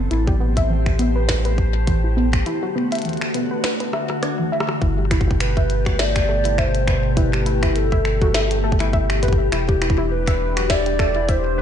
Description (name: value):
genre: IDM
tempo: 102 BPM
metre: 4/4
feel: swing 56% on 16ths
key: unclear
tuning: A4 = 440 Hz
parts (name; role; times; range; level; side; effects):
- glassy FM pad; sustained chords; 0.0-11.6 s; B2 to C5; -25 LUFS; left 3 dB; ensemble chorus, built-in reverb
- warm sub bass; bass; 0.0-11.6 s; E1 to A1; -21 LUFS; equal; tube saturation
- warbly dusty pluck; arpeggios; 0.1-11.6 s; E3 to E5; -25 LUFS; equal; chorus, cassette tape, ping-pong delay
- glitchy drum kit; drums; 0.1-11.4 s; finger snaps, hi-hat, rim click, snare drum; -27 LUFS; equal; studio reverb, ping-pong delay
- electronic kick drum; drums; 0.3-11.4 s; none; -20 LUFS; equal; studio reverb
- warbly nostalgic lead; melody; 5.4-11.6 s; A4 to D5; -25 LUFS; right 1 dB; wide subtle chorus, analog delay
room: moderate plate reverb, RT60 1.5 s, digital ambience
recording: dreamy mix soaked in reverb, nothing above 10.4 kHz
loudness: -17 LUFS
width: side -9 dB against mid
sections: 0.0-4.8 A section; 4.8-11.6 B section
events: break 2.5-4.8; drum fill 3.6-4.8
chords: 0.1 Am7; 2.5 D; 4.8 Gadd9; 9.5 Em7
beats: | 0.11 0.70 1.29 1.88 | 2.46 3.05 3.64 4.23 | 4.82 5.40 5.99 6.58 | 7.17 7.76 8.35 8.93 | 9.52 10.11 10.70 11.29